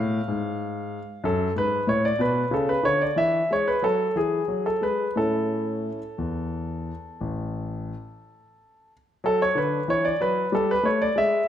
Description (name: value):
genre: classical, baroque-style suite movement for grand piano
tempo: 58-64 BPM (dotted quarters)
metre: 12/8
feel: rubato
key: A major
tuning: A4 = 440 Hz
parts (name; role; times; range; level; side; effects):
- clear concert grand piano; solo; 0.0-11.5 s; A1 to E#5; -22 LUFS; equal; none
room: moderate recital hall reverb, RT60 1.6 s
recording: none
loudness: -22 LUFS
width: side -10 dB against mid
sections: 0.0-9.2 A section; 9.2-11.5 A section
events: none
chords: 0.0 C# (rootless); 1.2 F#m (rootless); 3.2 Eadd9; 5.2 A; 9.2 D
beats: 0.28 | 1.24 2.19 3.17 4.15 | 5.16 6.19 7.21 8.22 | 9.24 10.21 11.17